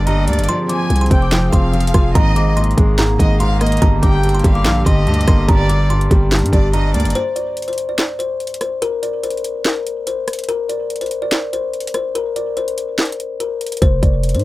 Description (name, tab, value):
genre	hip hop, trap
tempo	144 BPM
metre	4/4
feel	half-time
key	G phrygian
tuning	A4 = 440 Hz
part	kalimba	melody	0.0-14.4 s	Bb4 to D6	-22 LUFS	left 2 dB	none
part	warm chamber violin section	second line	0.0-7.1 s	D5 to Ab5	-24 LUFS	equal	tape echo
part	warm concert grand piano	accompaniment	0.0-7.2 s	G2 to F4	-20 LUFS	equal	none
part	hollow soft pad	sustained chords	0.0-7.1 s	D3 to Ab4	-24 LUFS	equal	chorus
part	growling 808-style bass	bass	0.0-7.1, 13.8-14.4 s	F1 to Ab2	-16 LUFS	equal	none
part	trap drum kit	drums	0.1-14.4 s	handclaps, hi-hat, kick drum, rim click, snare drum	-16 LUFS	equal	none
room	little or no reverb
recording	dry, gritty hardware recording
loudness	-14 LUFS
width	side -18 dB against mid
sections	0.0-7.2 A section; 7.2-14.4 B section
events	break 0.5-0.9, 7.2-13.8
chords	0.5 Fm; 2.2 Absus2; 3.8 Gm; 7.2 N.C.; 13.8 Fm